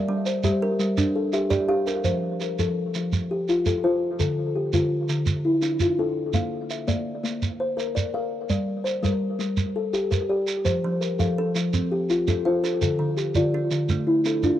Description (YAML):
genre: southern african traditional, mbira-style interlocking cycle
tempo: 111 BPM (dotted quarters)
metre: 12/8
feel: straight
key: F major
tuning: A4 = 438 Hz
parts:
  - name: kalimba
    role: arpeggios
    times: 0.0-14.6 s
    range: D3 to F5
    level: -23 LUFS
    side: left 2 dB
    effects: tape echo
  - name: kalimba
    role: arpeggios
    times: 0.0-2.2, 10.8-14.6 s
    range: D3 to F5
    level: -28 LUFS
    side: right 3 dB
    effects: none
  - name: shekere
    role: percussion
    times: 0.3-14.6 s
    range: none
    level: -26 LUFS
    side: right 3 dB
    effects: none
room: small room ambience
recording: dry, close 1970s-style studio recording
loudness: -22 LUFS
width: side -12 dB against mid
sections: 0.0-2.0 A section; 2.0-14.6 A section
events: none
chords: 0.0 Gm; 2.0 F; 4.2 Dm; 6.3 Bb; 8.5 Gm; 10.7 F; 12.8 Dm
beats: 0.44 0.97 1.51 | 2.05 2.58 3.12 3.66 | 4.20 4.73 5.27 5.81 | 6.35 6.89 7.42 7.96 | 8.50 9.04 9.58 10.12 | 10.66 11.20 11.74 12.28 | 12.82 13.36 13.90 14.44